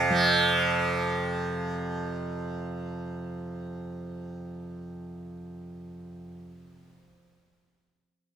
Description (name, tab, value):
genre	indian classical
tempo	173 BPM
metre	4/4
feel	straight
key	unclear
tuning	A4 = 440 Hz
part	tanpura	drone	0.0-7.1 s	F2 to F3	-27 LUFS	right 2 dB	none
room	light reverb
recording	none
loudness	-26 LUFS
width	side -8 dB against mid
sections	none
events	none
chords	none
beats	0.12